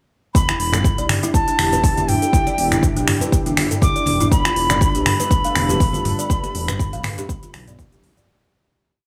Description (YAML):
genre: afro house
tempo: 121 BPM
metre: 4/4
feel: swing 55% on 16ths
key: E minor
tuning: A4 = 442 Hz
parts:
  - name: bright reedy bansuri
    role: melody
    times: 0.3-7.7 s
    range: G5 to D6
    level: -25 LUFS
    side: equal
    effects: dub echo
  - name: dark detuned saw bass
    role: bass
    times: 0.3-8.1 s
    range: E1 to B1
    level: -27 LUFS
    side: equal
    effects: sidechain pumping
  - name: electronic kick drum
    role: drums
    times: 0.3-7.9 s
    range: none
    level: -21 LUFS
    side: equal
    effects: none
  - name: dark analog pad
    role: sustained chords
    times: 0.8-8.2 s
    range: G3 to B4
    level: -28 LUFS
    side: equal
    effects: chorus, sidechain pumping
  - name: afro-pop drum kit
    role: drums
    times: 0.4-8.3 s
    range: cabasa, finger snaps, hi-hat, toms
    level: -24 LUFS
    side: equal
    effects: none
  - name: kalimba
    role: arpeggios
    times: 0.5-8.3 s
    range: D4 to F5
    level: -30 LUFS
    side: equal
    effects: sidechain pumping
  - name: congas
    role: percussion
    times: 0.5-8.1 s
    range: none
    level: -29 LUFS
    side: equal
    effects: none
room: light reverb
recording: none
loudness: -18 LUFS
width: mono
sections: 0.3-8.3 drop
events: drop 0.3-8.3; fade-out 5.6-8.3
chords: 0.3 Em7; 4.3 G/E